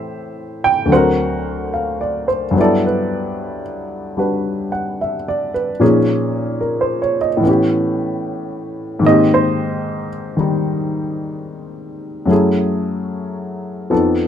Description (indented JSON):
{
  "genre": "jazz ballad",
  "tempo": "74 BPM",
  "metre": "4/4",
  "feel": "swing 68% on 8ths",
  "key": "unclear",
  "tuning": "A4 = 440 Hz",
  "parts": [
    { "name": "warm baby grand piano", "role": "solo", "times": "0.0-14.3 s", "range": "D2 to G5", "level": "-16 LUFS", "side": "equal", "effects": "none" }
  ],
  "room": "little or no reverb",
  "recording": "close, detailed microphones",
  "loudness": "-15 LUFS",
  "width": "side -9 dB against mid",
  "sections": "0.0-2.6 A section; 2.6-14.3 B section",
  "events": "none",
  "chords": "0.0 Am7; 0.9 Daug7; 2.6 Gmaj13; 5.8 Bbm7; 7.4 A9; 9.0 Abmaj7; 12.3 F#m9"
}